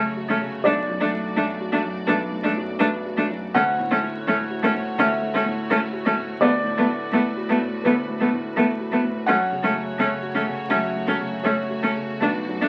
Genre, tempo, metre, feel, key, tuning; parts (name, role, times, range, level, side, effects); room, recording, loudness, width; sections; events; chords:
neoclassical piano and strings; 84 BPM; 4/4; rubato; B minor; A4 = 440 Hz
felt-muted upright piano; accompaniment; 0.0-12.7 s; B1 to F#5; -28 LUFS; equal
bright symphonic string section; sustained chords; 0.0-12.7 s; A3 to D5; -36 LUFS; equal
rich cello; second line; 0.3-12.7 s; A3; -28 LUFS; equal
rich viola; accompaniment; 0.3-12.7 s; B3 to D4; -26 LUFS; equal
wet studio reverb, RT60 0.7 s; very old 78 rpm record, vinyl crackle; -23 LUFS; mono
0.0-12.7 A section
0.0 F#m; 0.7 Bm7; 3.6 Dmaj7; 6.4 Bm7/D; 9.3 F#m